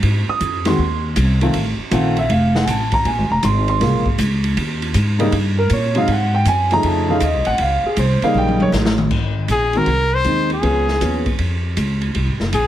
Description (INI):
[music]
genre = jazz, small-group swing and bop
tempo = 159 BPM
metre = 4/4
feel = swing 66% on 8ths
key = Ab mixolydian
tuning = A4 = 440 Hz
[part]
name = upright bass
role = bass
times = 0.0-12.7 s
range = F1 to Bb2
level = -18 LUFS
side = equal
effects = none
[part]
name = open jazz drum kit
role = drums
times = 0.0-12.6 s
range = crash cymbal, hi-hat, kick drum, ride cymbal, snare drum, toms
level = -23 LUFS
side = right 1 dB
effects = none
[part]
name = warm concert grand piano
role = accompaniment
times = 0.3-11.2 s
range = C3 to Eb6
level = -18 LUFS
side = right 1 dB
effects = none
[part]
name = clear trumpet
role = melody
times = 9.5-12.7 s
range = Ab4 to C5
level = -18 LUFS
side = left 2 dB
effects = none
[sound]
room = light reverb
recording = heavily compressed radio sound, multiband compression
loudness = -15 LUFS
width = side -12 dB against mid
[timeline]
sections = 0.0-9.1 A section; 9.1-12.7 B section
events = drum fill 8.4-9.1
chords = 0.0 Ab; 1.5 F7; 3.1 Bbm7; 4.6 Eb7; 6.1 Ab5; 6.8 F7b13; 7.6 Bbm; 8.4 Eb7; 9.1 Ab; 10.6 Db7; 12.2 Ab7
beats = | 0.03 0.41 0.79 1.17 | 1.54 1.92 2.30 2.68 | 3.06 3.43 3.81 4.19 | 4.57 4.95 5.32 5.70 | 6.08 6.46 6.84 7.21 | 7.59 7.97 8.35 8.73 | 9.11 9.49 9.87 10.25 | 10.63 11.01 11.39 11.77 | 12.15 12.53